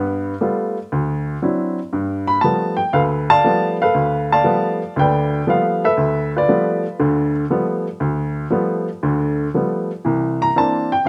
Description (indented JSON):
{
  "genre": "solo jazz",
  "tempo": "118 BPM",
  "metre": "4/4",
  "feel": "swing 69% on 8ths",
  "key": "G mixolydian",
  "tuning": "A4 = 440 Hz",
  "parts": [
    { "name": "warm upright piano", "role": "solo", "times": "0.0-11.1 s", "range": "G1 to B5", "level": "-19 LUFS", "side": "equal", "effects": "slapback echo" }
  ],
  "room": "little or no reverb",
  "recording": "recorded outdoors, with no room sound",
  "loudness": "-19 LUFS",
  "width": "mono",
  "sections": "0.0-1.9 A section; 1.9-11.1 A section",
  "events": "none",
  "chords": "0.0 G9; 0.9 D9; 1.9 G9; 10.0 C9"
}